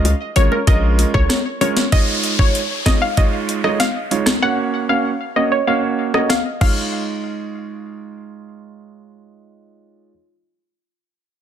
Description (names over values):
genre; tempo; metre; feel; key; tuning
dancehall; 96 BPM; 4/4; straight; Db major; A4 = 441 Hz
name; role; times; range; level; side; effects
warm grand piano; accompaniment; 0.0-10.1 s; Ab3 to Db5; -22 LUFS; right 6 dB; sidechain pumping, low-pass filter
hard-hitting 808-style bass; bass; 0.0-1.3 s; Ab1 to Db2; -15 LUFS; equal; none
island pop drum kit; drums; 0.1-6.8 s; crash cymbal, hi-hat, kick drum, rim click, snare drum; -18 LUFS; left 1 dB; overdrive
bongos; percussion; 0.1-1.9 s; none; -26 LUFS; left 9 dB; none
glassy wavetable pluck; melody; 0.4-8.8 s; Bb4 to Gb5; -21 LUFS; left 2 dB; chorus, low-pass filter, digital delay
downlifter; sound effects; 1.9-6.9 s; none; -26 LUFS; left 1 dB; none
room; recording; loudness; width
light reverb; dense, heavily limited modern master; -15 LUFS; side -9 dB against mid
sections
0.0-1.9 A section; 1.9-6.9 B section; 6.9-9.4 C section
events
none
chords
0.0 Bbm7; 1.9 Dbadd9; 4.4 Gb; 6.6 Dbadd9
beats
0.05 0.67 1.30 | 1.92 2.55 3.17 3.80 | 4.42 5.05 5.67 6.30 | 6.92 7.55 8.17 8.80